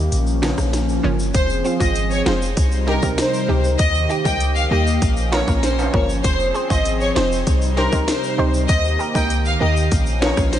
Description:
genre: dancehall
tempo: 98 BPM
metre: 4/4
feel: straight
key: F minor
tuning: A4 = 440 Hz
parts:
  - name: hollow soft pad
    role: sustained chords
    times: 0.0-10.6 s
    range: C3 to Ab4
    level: -25 LUFS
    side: equal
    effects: chorus, sidechain pumping
  - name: clean 808-style bass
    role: bass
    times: 0.0-10.6 s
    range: F1 to Eb2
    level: -21 LUFS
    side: equal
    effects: none
  - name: island pop drum kit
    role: drums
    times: 0.1-10.6 s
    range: hi-hat, kick drum, rim click, snare drum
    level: -22 LUFS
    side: equal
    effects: overdrive
  - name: tube shaker and timbales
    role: percussion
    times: 0.1-10.6 s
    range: none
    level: -31 LUFS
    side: equal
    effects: none
  - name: analog pluck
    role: accompaniment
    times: 0.4-10.5 s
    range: Db3 to C5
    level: -26 LUFS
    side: right 2 dB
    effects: chorus
  - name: warm studio violin section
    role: melody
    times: 1.3-10.6 s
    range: Bb4 to G5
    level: -22 LUFS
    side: left 1 dB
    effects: diffuse ambient delay
room: moderate huge ambient reverb, RT60 4.8 s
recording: dreamy mix soaked in reverb, nothing above 10.3 kHz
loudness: -16 LUFS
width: side -11 dB against mid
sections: 0.0-1.3 A section; 1.3-10.6 B section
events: kick muted 0.1-1.3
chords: 0.1 Bbm; 1.3 Fm; 2.6 Cm; 3.8 Eb; 5.0 Bbm; 6.2 Fm; 7.5 Cm; 8.7 Eb; 9.9 Bbm

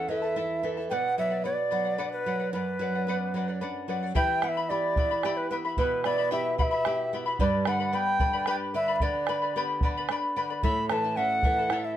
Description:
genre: andean folk, Andean ensemble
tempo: 74 BPM (dotted quarters)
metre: 6/8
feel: straight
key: unclear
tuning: A4 = 440 Hz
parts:
  - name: bright large quena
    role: melody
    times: 0.0-12.0 s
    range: B4 to B5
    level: -28 LUFS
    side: equal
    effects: none
  - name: charango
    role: accompaniment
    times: 0.0-12.0 s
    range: E4 to B5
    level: -32 LUFS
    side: left 4 dB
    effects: none
  - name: flamenco guitar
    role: accompaniment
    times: 0.0-12.0 s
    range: E2 to B4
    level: -32 LUFS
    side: right 3 dB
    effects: none
  - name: bombo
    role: percussion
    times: 4.2-11.8 s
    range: none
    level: -29 LUFS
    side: right 1 dB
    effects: none
room: moderate studio reverb, RT60 0.6 s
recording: dark, warm production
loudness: -25 LUFS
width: side -11 dB against mid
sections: 0.0-4.2 A section; 4.2-12.0 A section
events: none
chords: 0.0 A; 0.9 Bm; 4.2 Em; 7.4 G; 10.6 A

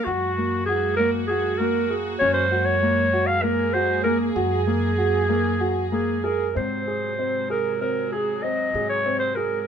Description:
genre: contemporary instrumental, chamber music in an uneven meter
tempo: 194 BPM (eighths)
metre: 7/8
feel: straight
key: Ab mixolydian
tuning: A4 = 440 Hz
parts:
  - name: growling clarinet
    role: melody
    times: 0.0-9.7 s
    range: Gb4 to F5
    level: -23 LUFS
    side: right 1 dB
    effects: none
  - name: warm symphonic string section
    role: sustained chords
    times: 0.0-9.7 s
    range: C3 to Ab4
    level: -30 LUFS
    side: right 5 dB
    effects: none
  - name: upright bass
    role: bass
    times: 0.0-9.7 s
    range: Gb2 to Ab2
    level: -29 LUFS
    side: right 2 dB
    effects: none
  - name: dark grand piano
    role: arpeggios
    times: 0.1-9.6 s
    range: Bb3 to Ab4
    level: -26 LUFS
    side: left 2 dB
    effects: none
room: moderate studio ambience, RT60 0.5 s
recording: minimal, uncompressed stereo recording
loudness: -20 LUFS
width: side -8 dB against mid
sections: 0.0-6.6 A section; 6.6-9.7 B section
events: none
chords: 0.1 Gbadd9; 6.6 Ab7

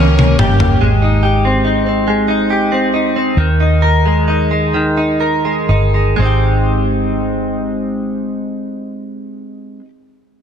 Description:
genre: six-eight pop ballad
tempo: 40-48 BPM (dotted quarters)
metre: 6/8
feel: straight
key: Ab major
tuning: A4 = 442 Hz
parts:
  - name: direct-recorded clean electric guitar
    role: accompaniment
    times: 0.0-9.9 s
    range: Eb3 to Bb4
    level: -15 LUFS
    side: equal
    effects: double-tracked left and right
  - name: fingerpicked plugged-in steel-string acoustic guitar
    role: arpeggios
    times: 0.0-1.4 s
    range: Bb3 to G4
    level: -25 LUFS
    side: right 2 dB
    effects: none
  - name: vintage muted fingered electric bass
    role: bass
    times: 0.0-9.8 s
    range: G1 to Eb2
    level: -15 LUFS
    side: equal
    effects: none
  - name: toms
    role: drums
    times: 0.2-0.8 s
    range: none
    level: -15 LUFS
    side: left 1 dB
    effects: soft clipping on snare
room: light reverb, studio ambience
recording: dense, heavily limited modern master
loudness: -12 LUFS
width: side -8 dB against mid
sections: 0.8-6.2 A section; 6.2-9.2 B section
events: drum fill 0.0-0.8; slowing down 0.8-6.2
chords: 0.0 Eb7; 0.8 Abmaj7; 3.4 Ebsus4; 6.2 Abmaj7

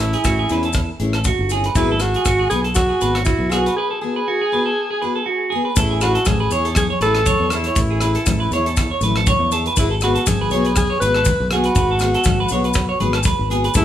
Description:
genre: highlife guitar band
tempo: 120 BPM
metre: 4/4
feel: swing 54% on 16ths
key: unclear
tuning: A4 = 438 Hz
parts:
  - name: warm alto saxophone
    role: melody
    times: 0.0-13.8 s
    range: E4 to B4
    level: -21 LUFS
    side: equal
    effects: none
  - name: picked steel-string acoustic guitar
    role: accompaniment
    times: 0.0-13.8 s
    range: F#3 to G#4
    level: -26 LUFS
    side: left 4 dB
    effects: none
  - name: clean electric guitar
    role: arpeggios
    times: 0.0-13.8 s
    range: F#4 to C#5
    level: -22 LUFS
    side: right 3 dB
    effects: none
  - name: fingered electric bass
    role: bass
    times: 0.0-13.8 s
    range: G1 to E2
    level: -22 LUFS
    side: equal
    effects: none
  - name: tight funk drum kit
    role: drums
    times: 0.0-13.8 s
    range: hi-hat, kick drum, rim click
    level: -22 LUFS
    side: equal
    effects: none
  - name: maracas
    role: percussion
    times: 0.2-13.8 s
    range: none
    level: -29 LUFS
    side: left 6 dB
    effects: none
  - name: congas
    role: percussion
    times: 5.8-13.8 s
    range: none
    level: -27 LUFS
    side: left 2 dB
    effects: none
room: moderate large studio reverb, RT60 1.1 s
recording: band playing live in one room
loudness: -16 LUFS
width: side -11 dB against mid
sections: 0.0-5.8 A section; 5.8-13.8 A section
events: break 3.8-5.8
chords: 0.0 Amaj7; 1.8 G#m7; 5.8 Amaj7; 9.8 G#m7

